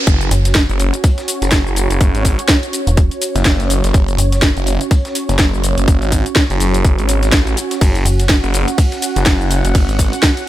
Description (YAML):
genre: bass house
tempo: 124 BPM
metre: 4/4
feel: swing 58% on 16ths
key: unclear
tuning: A4 = 439 Hz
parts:
  - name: sweeping resonant pad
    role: sustained chords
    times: 0.0-10.5 s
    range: C#4 to F#5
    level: -23 LUFS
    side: right 2 dB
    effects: chorus, sidechain pumping
  - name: phased detuned saw bass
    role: bass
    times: 0.1-10.1 s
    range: F#1 to A1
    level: -16 LUFS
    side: equal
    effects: phaser, tube saturation, sidechain pumping
  - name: dusty soul sampler-style drum kit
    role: drums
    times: 0.1-10.5 s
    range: hi-hat, snare drum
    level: -31 LUFS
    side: left 1 dB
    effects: none
  - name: electronic kick drum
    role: drums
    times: 0.1-10.3 s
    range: none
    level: -13 LUFS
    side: equal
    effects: overdrive
  - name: garage drum kit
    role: drums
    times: 0.1-10.5 s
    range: hi-hat, ride cymbal, shaker, snare drum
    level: -18 LUFS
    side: equal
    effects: overdrive, high-pass filter on snare, high-pass filter on hats, high-pass filter on perc, high-pass filter on cymbals
  - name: metallic FM bass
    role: bass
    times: 0.3-4.5, 8.1-8.4 s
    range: E1 to F#1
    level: -15 LUFS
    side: equal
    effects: tube saturation, sidechain pumping
room: little or no reverb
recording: none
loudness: -12 LUFS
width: side -14 dB against mid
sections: 0.1-10.5 A section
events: drop 0.1-10.5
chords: 0.1 F#5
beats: | 0.07 0.56 1.04 1.52 | 2.01 2.49 2.97 3.46 | 3.94 4.43 4.91 5.39 | 5.88 6.36 6.84 7.33 | 7.81 8.30 8.78 9.26 | 9.75 10.23